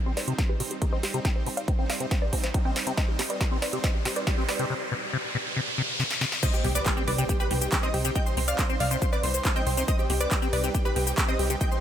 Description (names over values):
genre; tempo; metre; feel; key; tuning
uplifting trance; 139 BPM; 4/4; straight; C harmonic minor; A4 = 441 Hz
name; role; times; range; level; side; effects
wide unison pluck; melody; 0.0-11.8 s; G4 to G5; -31 LUFS; equal; vintage 12-bit sampler grit, sidechain pumping, tape echo
riser and impact; sound effects; 0.0-8.2 s; none; -35 LUFS; equal; none
liquid acid bass; arpeggios; 0.1-11.6 s; B2 to C4; -34 LUFS; left 3 dB; phaser, sidechain pumping, tape echo
big-room dance drum kit; drums; 0.2-11.8 s; crash cymbal, handclaps, hi-hat, shaker, snare drum; -31 LUFS; right 1 dB; high-pass filter on snare, high-pass filter on hats, high-pass filter on cymbals, high-pass filter on perc
electronic kick drum; drums; 0.4-11.7 s; none; -26 LUFS; equal; none
plucky unison lead; second line; 6.4-11.8 s; G5 to G6; -37 LUFS; equal; sidechain pumping, tape echo
plucky analog bass; bass; 6.6-11.6 s; C2; -28 LUFS; equal; sidechain pumping
room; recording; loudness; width
little or no reverb; none; -24 LUFS; side -10 dB against mid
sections
0.0-6.4 A section; 6.4-11.8 B section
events
build-up 0.0-6.4; drum fill 0.0-4.7, 6.0-6.4; riser 0.0-6.4; filter sweep on synth pluck 0.0-6.4; filter sweep on acid bass 0.0-6.4; drop 6.4-11.8; impact 6.4-8.2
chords
0.0 Cm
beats
0.39 0.82 | 1.25 1.68 2.11 2.54 | 2.98 3.41 3.84 4.27 | 4.70 5.13 5.57 6.00 | 6.43 6.86 7.29 7.72 | 8.15 8.59 9.02 9.45 | 9.88 10.31 10.74 11.18 | 11.61